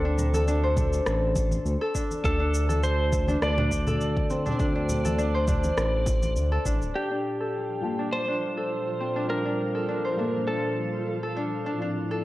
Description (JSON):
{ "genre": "organic downtempo", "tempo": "102 BPM", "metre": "4/4", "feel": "swing 54% on 16ths", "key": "unclear", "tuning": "A4 = 439 Hz", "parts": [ { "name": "clean lap steel guitar", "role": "melody", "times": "0.0-11.3 s", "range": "G4 to D5", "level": "-31 LUFS", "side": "right 1 dB", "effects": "tape echo" }, { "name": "Celtic harp", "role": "arpeggios", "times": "0.0-12.2 s", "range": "C4 to C5", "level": "-29 LUFS", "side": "left 1 dB", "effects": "low-pass filter, tape echo" }, { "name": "smooth synth bass", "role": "bass", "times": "0.0-6.9 s", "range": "D1 to D2", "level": "-26 LUFS", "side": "equal", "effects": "none" }, { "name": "electronic cabasa and rim click", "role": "drums", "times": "0.2-6.9 s", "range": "none", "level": "-34 LUFS", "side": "equal", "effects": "none" }, { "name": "congas", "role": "percussion", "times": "0.2-6.9 s", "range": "none", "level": "-34 LUFS", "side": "equal", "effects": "none" }, { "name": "electronic kick drum", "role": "drums", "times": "0.8-6.8 s", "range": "none", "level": "-29 LUFS", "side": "equal", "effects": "none" }, { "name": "warm analog pad", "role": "sustained chords", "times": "6.9-12.2 s", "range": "A2 to F4", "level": "-34 LUFS", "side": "right 1 dB", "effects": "chorus, sidechain pumping" }, { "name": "twinkling granular texture", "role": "texture", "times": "7.6-12.2 s", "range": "F3", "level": "-38 LUFS", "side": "right 2 dB", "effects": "built-in reverb" }, { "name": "deep mellow chord stab", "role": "accompaniment", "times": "7.8-11.6 s", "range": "G3 to A5", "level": "-33 LUFS", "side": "left 1 dB", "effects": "chorus, phaser, sidechain pumping, tape echo" } ], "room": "light reverb, digital ambience", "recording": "worn, warbling old tape, cassette tape, warbly pitch drift", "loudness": "-24 LUFS", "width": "side -16 dB against mid", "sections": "0.0-7.0 A section; 7.0-12.2 B section", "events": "filter sweep on harp 7.0-12.2; filter sweep on analog synth pad 7.0-12.2", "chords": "0.0 D5; 7.0 Gm7; 11.7 Fmaj7" }